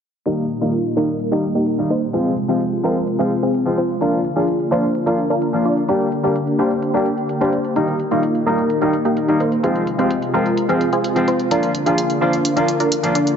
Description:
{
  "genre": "EDM, festival progressive house",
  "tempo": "128 BPM",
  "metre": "4/4",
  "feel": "straight",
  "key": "Eb major",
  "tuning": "A4 = 436 Hz",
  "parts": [
    { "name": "warm concert grand piano", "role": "accompaniment", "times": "0.3-13.1 s", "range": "Eb3 to G4", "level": "-21 LUFS", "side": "left 1 dB", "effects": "digital delay" },
    { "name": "lush unison pad", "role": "sustained chords", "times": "0.3-13.4 s", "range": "Bb2 to G4", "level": "-24 LUFS", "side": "equal", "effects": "chorus, phaser" },
    { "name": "supersaw stab", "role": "riff", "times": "0.3-13.3 s", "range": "Bb3 to D5", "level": "-19 LUFS", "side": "equal", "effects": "cassette tape, low-pass filter, digital delay" },
    { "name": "electronic hi-hat", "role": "drums", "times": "0.3-13.4 s", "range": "none", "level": "-29 LUFS", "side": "right 1 dB", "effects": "none" }
  ],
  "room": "moderate lush hall reverb, RT60 1.9 s, digital ambience",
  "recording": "heavily compressed radio sound, low-pass filter, nothing above 7.7 kHz",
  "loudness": "-16 LUFS",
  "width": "side -7 dB against mid",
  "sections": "0.3-13.4 A section",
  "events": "filter sweep on analog synth pad 0.3-13.4; filter sweep 0.3-13.4",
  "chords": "0.3 Eb; 2.1 Fm; 4.0 Bb; 5.9 Gm; 7.8 Eb; 9.6 Fm; 11.5 Bb",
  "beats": "| 0.26 0.73 1.20 1.67 | 2.14 2.61 3.08 3.54 | 4.01 4.48 4.95 5.42 | 5.89 6.36 6.83 7.29 | 7.76 8.23 8.70 9.17 | 9.64 10.11 10.57 11.04 | 11.51 11.98 12.45 12.92"
}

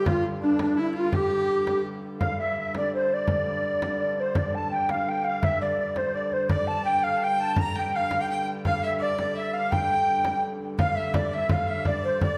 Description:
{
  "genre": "medieval dance",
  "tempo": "168 BPM",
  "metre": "3/4",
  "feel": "straight",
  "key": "unclear",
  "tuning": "A4 = 439 Hz",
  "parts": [
    { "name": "mellow hollow tenor recorder", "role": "melody", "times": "0.0-12.4 s", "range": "D4 to Bb5", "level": "-28 LUFS", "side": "equal", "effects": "none" },
    { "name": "clear fiddle", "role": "second line", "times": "0.0-1.8, 6.5-12.4 s", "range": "D4 to Bb5", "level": "-37 LUFS", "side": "equal", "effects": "none" },
    { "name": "musette accordion", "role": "second line", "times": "0.0-12.4 s", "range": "D4 to Bb5", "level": "-36 LUFS", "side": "equal", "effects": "none" },
    { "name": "dark hurdy-gurdy", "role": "drone", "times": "0.0-12.4 s", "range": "G2 to D3", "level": "-36 LUFS", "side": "equal", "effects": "none" },
    { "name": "frame drum", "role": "percussion", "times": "0.1-12.4 s", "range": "none", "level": "-32 LUFS", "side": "equal", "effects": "none" }
  ],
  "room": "wet recital hall reverb, RT60 1.6 s",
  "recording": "dark, warm production",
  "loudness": "-26 LUFS",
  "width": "mono",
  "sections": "0.0-2.2 A section; 2.2-10.8 A section; 10.8-12.4 B section",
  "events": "none",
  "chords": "none",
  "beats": "| 0.06 0.41 0.77 | 1.13 1.49 1.85 | 2.21 2.56 2.92 | 3.28 3.64 4.00 | 4.36 4.71 5.07 | 5.43 5.79 6.14 | 6.50 6.86 7.22 | 7.57 7.93 8.29 | 8.64 9.00 9.36 | 9.71 10.07 10.43 | 10.79 11.14 11.50 | 11.86 12.21"
}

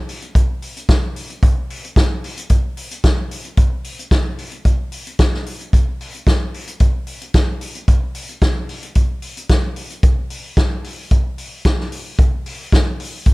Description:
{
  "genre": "disco",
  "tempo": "111 BPM",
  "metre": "4/4",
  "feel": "straight",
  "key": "none",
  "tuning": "none",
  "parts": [
    { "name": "vintage drum kit", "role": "drums", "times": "0.1-13.3 s", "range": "hi-hat, kick drum, snare drum", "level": "-16 LUFS", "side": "equal", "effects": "none" }
  ],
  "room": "little or no reverb",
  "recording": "dark, warm production",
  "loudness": "-16 LUFS",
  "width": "side -23 dB against mid",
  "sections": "0.0-10.0 A section; 10.0-13.3 B section",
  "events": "none",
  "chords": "none",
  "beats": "0.34 0.88 | 1.42 1.96 2.50 3.04 | 3.58 4.11 4.65 5.19 | 5.73 6.27 6.80 7.34 | 7.88 8.42 8.96 9.50 | 10.03 10.57 11.11 11.65 | 12.19 12.73 13.27"
}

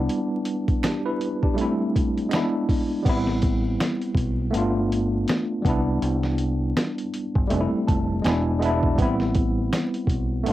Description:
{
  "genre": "lo-fi hip hop",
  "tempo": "81 BPM",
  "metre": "4/4",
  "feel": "swing 58% on 16ths",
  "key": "A minor",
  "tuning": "A4 = 440 Hz",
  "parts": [
    { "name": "tine electric piano", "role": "accompaniment", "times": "0.0-10.5 s", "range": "G3 to A5", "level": "-24 LUFS", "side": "equal", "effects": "overdrive, fast stereo tremolo, cassette tape" },
    { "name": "deep dub fingered electric bass", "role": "bass", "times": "0.0-10.5 s", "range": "E1 to C2", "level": "-26 LUFS", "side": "equal", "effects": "none" },
    { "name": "dusty soul sampler-style drum kit", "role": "drums", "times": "0.1-10.5 s", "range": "crash cymbal, hi-hat, kick drum, snare drum", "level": "-24 LUFS", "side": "equal", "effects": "vintage 12-bit sampler grit, cassette tape" },
    { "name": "finger snaps", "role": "percussion", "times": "0.8-2.5 s", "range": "none", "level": "-39 LUFS", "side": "right 9 dB", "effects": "none" }
  ],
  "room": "light reverb",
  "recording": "home recording on cassette, vinyl crackle",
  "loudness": "-21 LUFS",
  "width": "side -14 dB against mid",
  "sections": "0.0-3.1 A section; 3.1-10.5 B section",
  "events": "tine electric piano fill 7.5-9.0",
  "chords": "0.0 Cmaj7 (rootless); 1.6 C69/G; 2.3 E7; 3.1 Am9; 4.5 G7; 5.6 Cmaj7; 7.5 Fmaj9; 8.2 E7; 9.0 Am9",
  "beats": "| 0.09 0.83 1.57 2.31 | 3.06 3.80 4.54 5.28 | 6.02 6.76 7.50 8.24 | 8.98 9.72 10.46"
}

